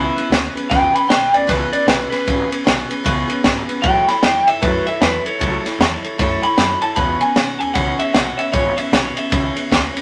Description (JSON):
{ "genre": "rockabilly", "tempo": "153 BPM", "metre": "4/4", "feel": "swing 62% on 8ths", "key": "E mixolydian", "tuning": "A4 = 440 Hz", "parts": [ { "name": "electric guitar through a small old amp", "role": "melody", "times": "0.0-9.9 s", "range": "E4 to B5", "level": "-20 LUFS", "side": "equal", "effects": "none" }, { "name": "picked steel-string acoustic guitar", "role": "accompaniment", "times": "0.0-10.0 s", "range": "C#3 to C#5", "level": "-25 LUFS", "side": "equal", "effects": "none" }, { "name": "upright bass", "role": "bass", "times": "0.0-10.0 s", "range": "E1 to F#2", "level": "-30 LUFS", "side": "equal", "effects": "none" }, { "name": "compact cocktail drum kit", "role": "drums", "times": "0.2-10.0 s", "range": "kick drum, ride cymbal, snare drum", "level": "-21 LUFS", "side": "equal", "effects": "none" } ], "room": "moderate studio reverb, RT60 0.8 s", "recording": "none", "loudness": "-17 LUFS", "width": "mono", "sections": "0.0-10.0 A section", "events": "none", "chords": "0.0 E6; 3.8 A6; 7.0 E6", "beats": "0.31 | 0.70 1.09 1.48 1.87 | 2.26 2.65 3.05 3.44 | 3.83 4.22 4.61 5.00 | 5.39 5.79 6.18 6.57 | 6.96 7.35 7.74 8.14 | 8.53 8.92 9.31 9.70" }